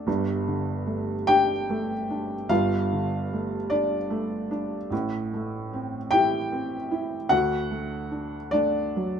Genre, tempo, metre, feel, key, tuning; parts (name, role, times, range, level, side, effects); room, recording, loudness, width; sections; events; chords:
neoclassical minimalist piano; 50 BPM (dotted quarters); 6/8; rubato; A4 = 440 Hz
felt-muted upright piano; solo; 0.0-9.2 s; G1 to G5; -24 LUFS; equal
light reverb; minimal, uncompressed stereo recording; -24 LUFS; side -7 dB against mid
0.0-9.2 A section
0.1 Gsus2; 4.9 Am7; 7.3 D